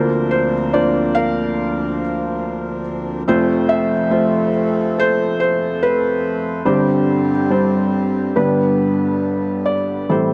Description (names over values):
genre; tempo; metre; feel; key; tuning
acoustic folk-pop ballad; 71 BPM; 4/4; straight; unclear; A4 = 436 Hz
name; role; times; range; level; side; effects
felt-muted upright piano; melody; 0.0-10.3 s; F1 to F5; -19 LUFS; equal; none
hand-pumped harmonium; sustained chords; 0.0-10.1 s; D2 to Bb4; -26 LUFS; equal; none
room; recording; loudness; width
little or no reverb; dry, close 1970s-style studio recording; -18 LUFS; mono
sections
0.0-10.1 A section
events
none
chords
0.0 Bbadd9/D; 3.3 F; 6.7 Gsus4; 8.4 G